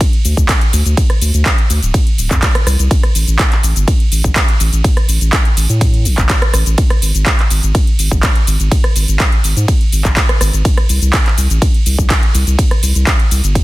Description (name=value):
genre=progressive house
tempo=124 BPM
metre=4/4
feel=straight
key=unclear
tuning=A4 = 443 Hz
part: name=big-room dance drum kit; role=drums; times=0.0-13.6 s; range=handclaps, hi-hat, ride cymbal, rim click, shaker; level=-17 LUFS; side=equal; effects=sidechain pumping on hats, small room ambience, sidechain pumping on perc, sidechain pumping on cymbals
part: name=electronic kick drum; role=drums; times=0.0-13.6 s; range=none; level=-12 LUFS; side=equal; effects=small room ambience
part: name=saturated sub bass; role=bass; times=0.2-13.6 s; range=D1 to A2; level=-13 LUFS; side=equal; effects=sidechain pumping
room=digital ambience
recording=dense, heavily limited modern master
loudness=-10 LUFS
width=side -18 dB against mid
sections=0.0-13.6 A section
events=none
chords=none